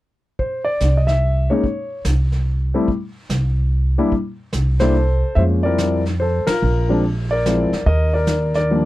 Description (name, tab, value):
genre	jazz piano trio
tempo	145 BPM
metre	3/4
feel	swing 64% on 8ths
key	F major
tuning	A4 = 440 Hz
part	warm concert grand piano	melody	0.4-8.9 s	F3 to E5	-19 LUFS	left 1 dB	none
part	vintage brush drum kit	drums	0.4-8.9 s	brushed snare drum, hi-hat, kick drum, ride cymbal, snare drum	-27 LUFS	equal	none
part	upright bass	bass	0.8-8.9 s	Bb1 to F2	-18 LUFS	equal	none
room	little or no reverb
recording	none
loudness	-16 LUFS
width	side -16 dB against mid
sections	0.4-5.4 A section; 5.4-8.9 B section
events	band accent 6.4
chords	0.4 C(b9); 5.4 Fmaj7(no3); 6.6 Bb7; 7.9 Ebmaj7(no3)